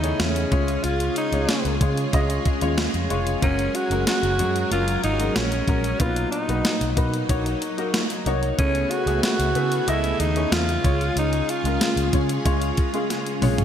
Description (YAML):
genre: 1980s-style pop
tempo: 93 BPM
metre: 4/4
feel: straight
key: unclear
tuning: A4 = 440 Hz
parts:
  - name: breathy alto saxophone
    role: melody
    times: 0.0-12.1 s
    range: C#4 to F#4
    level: -25 LUFS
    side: equal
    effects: none
  - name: warm baby grand piano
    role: accompaniment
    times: 0.0-13.6 s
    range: A#2 to D#5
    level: -27 LUFS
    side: left 3 dB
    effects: analog chorus
  - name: string machine, violins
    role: sustained chords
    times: 0.0-13.6 s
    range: C#3 to A#4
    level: -28 LUFS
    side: equal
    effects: ensemble chorus
  - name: vintage muted fingered electric bass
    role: bass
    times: 0.0-13.6 s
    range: E#1 to C#3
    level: -26 LUFS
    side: equal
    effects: none
  - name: clean 12-bit digital drum machine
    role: drums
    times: 0.0-13.6 s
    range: hi-hat, kick drum, snare drum, toms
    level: -24 LUFS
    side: equal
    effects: gated reverb
room: moderate lush hall reverb, RT60 1.7 s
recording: bright 1980s-style digital production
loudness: -20 LUFS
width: side -9 dB against mid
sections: 0.0-13.6 A section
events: drum fill 13.1-13.6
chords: 0.0 Amaj7; 0.5 C#; 3.4 F#add9; 6.0 Bmaj7; 8.6 Amaj7/C#; 10.8 C#